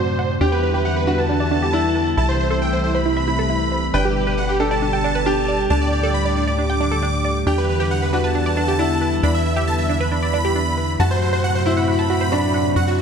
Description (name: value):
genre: trance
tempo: 136 BPM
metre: 4/4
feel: straight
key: E minor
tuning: A4 = 439 Hz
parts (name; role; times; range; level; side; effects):
- supersaw chords; melody; 0.0-13.0 s; F#4 to D6; -23 LUFS; right 1 dB; low-pass filter, dub echo
- clear grand piano; second line; 0.0-13.0 s; D4 to B4; -24 LUFS; left 2 dB; ping-pong delay
- lush unison pad; sustained chords; 0.0-13.0 s; A2 to G4; -24 LUFS; left 1 dB; chorus
- analog pluck; arpeggios; 0.0-12.8 s; D4 to A5; -25 LUFS; right 4 dB; chorus, phaser, dub echo
- tight sequencer bass; bass; 0.0-13.0 s; G1 to F#2; -22 LUFS; equal; none
room: moderate huge ambient reverb, RT60 4.3 s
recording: dark, warm production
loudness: -17 LUFS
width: side -7 dB against mid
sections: 0.0-13.0 A section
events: filter sweep on synth arpeggio sound 0.0-13.0; filter sweep on analog synth pad 0.0-13.0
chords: 0.4 Em7; 2.2 C6; 3.9 G; 5.7 Dsus4; 7.5 Em7; 11.0 F#dim